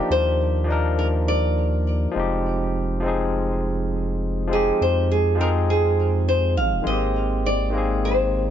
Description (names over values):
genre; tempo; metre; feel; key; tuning
sunset chillout; 102 BPM; 4/4; straight; unclear; A4 = 440 Hz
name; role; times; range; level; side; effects
flamenco guitar; melody; 0.0-8.5 s; G4 to F5; -23 LUFS; left 1 dB; digital delay
barky tine electric piano; accompaniment; 0.0-8.5 s; Eb3 to Bb4; -24 LUFS; moving between left 4 dB and right 3 dB; overdrive, auto-pan, tape echo
warm sub bass; bass; 0.1-8.5 s; Eb1 to F2; -23 LUFS; right 1 dB; tube saturation
room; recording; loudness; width
light reverb, studio reverb; nothing above 7.7 kHz; -19 LUFS; side -9 dB against mid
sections
0.0-8.5 A section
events
none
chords
0.0 Ebmaj7; 2.2 Fm7; 6.9 Abmaj7